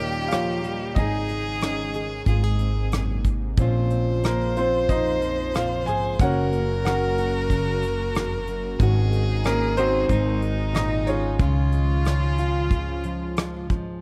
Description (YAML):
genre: acoustic folk-pop ballad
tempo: 92 BPM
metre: 4/4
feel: straight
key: unclear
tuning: A4 = 440 Hz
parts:
  - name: clear baby grand piano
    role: melody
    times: 0.0-13.3 s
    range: Bb3 to Ab5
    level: -29 LUFS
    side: equal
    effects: none
  - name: clear violin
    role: second line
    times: 0.0-13.7 s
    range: Eb4 to C5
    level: -32 LUFS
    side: equal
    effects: none
  - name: nylon-string guitar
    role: accompaniment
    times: 0.0-14.0 s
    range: F2 to Ab4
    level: -30 LUFS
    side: equal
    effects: none
  - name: phased analog pad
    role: sustained chords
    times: 0.0-14.0 s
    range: C3 to Gb4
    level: -38 LUFS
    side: equal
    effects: phaser, chorus
  - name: upright bass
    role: bass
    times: 0.0-14.0 s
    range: Gb1 to Eb2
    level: -28 LUFS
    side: equal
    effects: none
  - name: soft brush drum kit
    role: drums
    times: 0.3-13.9 s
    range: hi-hat, kick drum, rim click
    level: -26 LUFS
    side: equal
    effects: none
room: light reverb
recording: none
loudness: -23 LUFS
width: mono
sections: 0.0-14.0 A section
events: none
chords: 0.0 Eb7; 1.0 Absus4; 2.3 Abadd9; 3.6 Bbmadd9; 6.2 Gb; 8.8 Ab7sus4; 10.1 Ab7; 11.4 Db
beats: 0.32 | 0.97 1.62 2.27 2.93 | 3.58 4.24 4.90 5.55 | 6.21 6.86 7.51 8.16 | 8.81 9.46 10.10 10.75 | 11.40 12.06 12.71 13.38